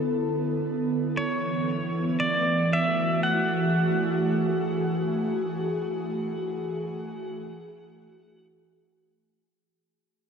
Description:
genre	ambient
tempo	free time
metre	none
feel	none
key	F# minor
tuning	A4 = 445 Hz
part	airy breathy pad	sustained chords	0.0-9.6 s	D3 to A4	-26 LUFS	right 1 dB	chorus
part	pedal steel guitar	melody	1.2-8.5 s	C#5 to F#5	-29 LUFS	equal	shimmer reverb, tape echo
room	wet huge ambient reverb, RT60 8.2 s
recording	dark, warm production, lossy compression artefacts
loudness	-24 LUFS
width	side -6 dB against mid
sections	0.0-9.6 A section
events	fade-out 4.0-9.6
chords	0.0 E7sus4; 1.2 F#m9

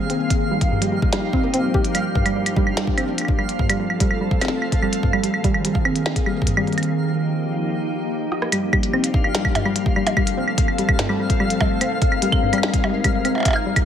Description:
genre	IDM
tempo	146 BPM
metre	4/4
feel	straight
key	G minor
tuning	A4 = 441 Hz
part	glassy FM pad	sustained chords	0.0-13.8 s	Eb3 to Bb4	-24 LUFS	left 1 dB	ensemble chorus, built-in reverb
part	twinkling granular texture	texture	0.0-13.8 s	F5	-29 LUFS	left 2 dB	built-in reverb
part	soft round pluck	arpeggios	0.1-13.7 s	G2 to G4	-24 LUFS	equal	chorus, digital delay
part	glitchy drum kit	drums	0.1-13.8 s	claves, hi-hat, percussion blips, rim click, snare drum	-24 LUFS	right 1 dB	none
part	electronic kick drum	drums	0.3-13.8 s	none	-21 LUFS	equal	none
room	light reverb, digital ambience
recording	none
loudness	-18 LUFS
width	side -9 dB against mid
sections	0.0-8.5 A section; 8.5-13.8 B section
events	break 6.9-8.5; drum fill 8.3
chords	0.3 Ebadd9; 1.9 Gm7; 3.6 F; 5.2 Abadd9; 6.9 Ebadd9; 8.5 Gm7; 10.2 F; 11.8 Abadd9

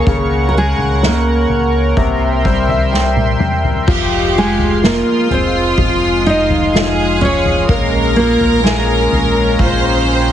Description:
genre	pop ballad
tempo	63 BPM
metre	4/4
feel	straight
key	F minor from 3.9 s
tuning	A4 = 441 Hz
part	nylon-string guitar	melody	0.0-10.0 s	Ab3 to Eb5	-17 LUFS	right 1 dB	ping-pong delay
part	clear concert grand piano	accompaniment	0.0-10.3 s	C3 to G5	-20 LUFS	left 6 dB	none
part	chorused pulse-width pad	sustained chords	0.0-10.3 s	Ab3 to C#6	-20 LUFS	right 2 dB	none
part	sub bass with octave	bass	0.0-10.3 s	F1 to Db2	-19 LUFS	equal	none
part	soft-mallet drum kit	drums	0.1-9.8 s	crash cymbal, kick drum, snare drum, toms	-18 LUFS	equal	none
part	clear studio violin section	second line	3.9-10.3 s	F4 to C5	-18 LUFS	right 1 dB	ping-pong delay
room	light reverb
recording	heavily compressed radio sound, nothing above 10.5 kHz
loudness	-11 LUFS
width	side -10 dB against mid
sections	0.0-3.9 A section; 3.9-10.3 A section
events	grand piano fill 2.0-3.9; drum fill 2.9-3.9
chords	0.1 Gb/Db; 2.0 C7; 3.9 Fm; 7.7 Bbm7

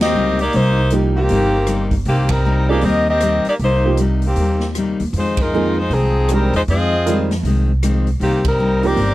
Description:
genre	jazz, big band swing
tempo	156 BPM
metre	4/4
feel	swing 64% on 8ths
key	C minor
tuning	A4 = 438 Hz
part	bright saxophone section	melody	0.0-9.1 s	Eb3 to Eb5	-18 LUFS	left 1 dB	none
part	picked steel-string acoustic guitar	accompaniment	0.0-9.1 s	F2 to Eb4	-22 LUFS	left 4 dB	none
part	upright bass	bass	0.0-9.1 s	G1 to F2	-18 LUFS	right 1 dB	none
part	swinging big-band drum kit	drums	0.0-9.1 s	hi-hat, kick drum, ride cymbal, rim click, snare drum	-26 LUFS	equal	none
part	warm upright piano	accompaniment	0.9-9.0 s	F3 to C5	-21 LUFS	right 6 dB	none
room	little or no reverb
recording	none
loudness	-14 LUFS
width	side -16 dB against mid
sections	0.0-9.1 A section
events	band accent 2.3, 5.3, 8.4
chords	0.0 Cm7; 5.1 Fm7; 8.2 Cm7

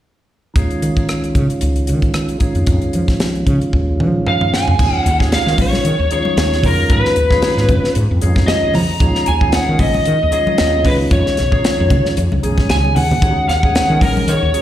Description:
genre	electric jazz fusion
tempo	114 BPM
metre	4/4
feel	swing 55% on 16ths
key	Eb minor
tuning	A4 = 441 Hz
part	percussive tonewheel organ	accompaniment	0.5-14.6 s	Eb3 to Ab4	-21 LUFS	right 2 dB	slow rotary speaker, slapback echo
part	woody fretless electric bass	bass	0.6-14.5 s	Bb1 to F3	-17 LUFS	equal	none
part	tight funk drum kit	drums	0.6-14.6 s	crash cymbal, hi-hat, kick drum, rim click, snare drum, toms	-18 LUFS	equal	none
part	lead guitar through a small cranked amp	melody	4.3-14.6 s	Bb4 to Bb5	-17 LUFS	left 1 dB	overdrive, slapback echo
part	congas	percussion	5.6-14.3 s	none	-21 LUFS	left 1 dB	slapback echo
room	light reverb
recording	live gig heard through the venue's PA, recital hall reverb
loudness	-13 LUFS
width	side -12 dB against mid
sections	0.6-4.8 A section; 4.8-14.6 B section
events	drum fill 3.7-4.8, 12.8-13.2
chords	0.6 Dbadd9; 2.4 Eb9sus4; 4.8 Eb5; 6.6 Fm7b5; 9.0 Eb5; 10.9 Db7; 13.2 Ebm7

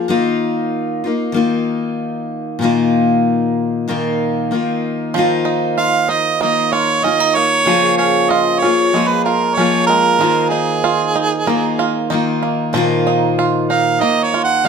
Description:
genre	acoustic folk duo or small band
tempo	95 BPM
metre	4/4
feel	straight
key	unclear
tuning	A4 = 443 Hz
part	picked steel-string acoustic guitar	accompaniment	0.0-14.7 s	Bb2 to Ab4	-16 LUFS	left 2 dB	none
part	bluegrass banjo	arpeggios	5.1-14.7 s	F3 to F4	-20 LUFS	right 8 dB	none
part	clear harmonica	second line	5.8-14.7 s	Ab4 to Gb5	-15 LUFS	right 4 dB	none
room	moderate studio reverb, RT60 0.8 s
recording	close, detailed microphones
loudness	-13 LUFS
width	side -6 dB against mid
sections	0.0-5.1 A section; 5.1-14.7 B section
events	harmonica solo 5.1-14.7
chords	0.1 Ebsus2; 2.6 Bbsus4; 5.1 Ebsus2; 7.7 Bbm7/Db; 10.2 Ebsus2; 12.7 Bbsus4

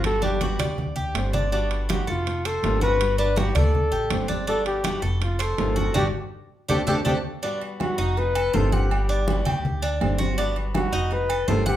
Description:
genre	latin, Cuban son and guajira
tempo	162 BPM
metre	4/4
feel	straight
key	G major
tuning	A4 = 440 Hz
part	flamenco guitar	accompaniment	0.0-11.8 s	C3 to F#4	-31 LUFS	left 1 dB	none
part	Cuban tres	arpeggios	0.0-11.8 s	D4 to F#5	-29 LUFS	right 1 dB	none
part	upright bass	bass	0.0-11.8 s	F1 to D2	-26 LUFS	equal	none
part	congas	percussion	0.0-11.8 s	none	-29 LUFS	right 1 dB	none
part	timbales and agogo bells	percussion	0.0-11.8 s	none	-33 LUFS	right 4 dB	none
part	trumpet with bucket mute	melody	0.1-11.8 s	F4 to B4	-26 LUFS	left 1 dB	none
room	wet large studio reverb, RT60 1.0 s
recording	band playing live in one room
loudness	-21 LUFS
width	side -12 dB against mid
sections	0.0-7.4 A section; 7.4-11.8 B section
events	drum fill 0.0-1.5, 6.3-7.4; band accent 6.0-7.4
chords	0.0 Gmaj7; 0.8 D7sus4; 1.5 Gmaj7; 2.3 F7; 3.0 Gmaj7; 3.7 D7sus4; 4.5 Gmaj7; 5.2 F7; 6.0 Gmaj7; 6.7 D7sus4; 7.4 Gmaj7; 8.2 F7; 8.9 Gmaj7; 9.6 D7sus4; 10.4 Gmaj7; 11.1 F7

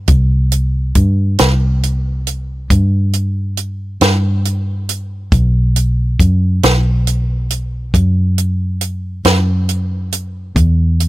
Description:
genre	slow blues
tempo	46 BPM (dotted quarters)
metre	12/8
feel	straight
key	unclear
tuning	A4 = 439 Hz
part	vintage muted fingered electric bass	bass	0.0-11.1 s	B1 to G2	-14 LUFS	equal	none
part	compact cocktail drum kit	drums	0.1-11.1 s	hi-hat, kick drum, snare drum	-15 LUFS	right 1 dB	none
room	little or no reverb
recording	none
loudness	-13 LUFS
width	side -16 dB against mid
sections	0.0-11.1 A section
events	none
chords	none

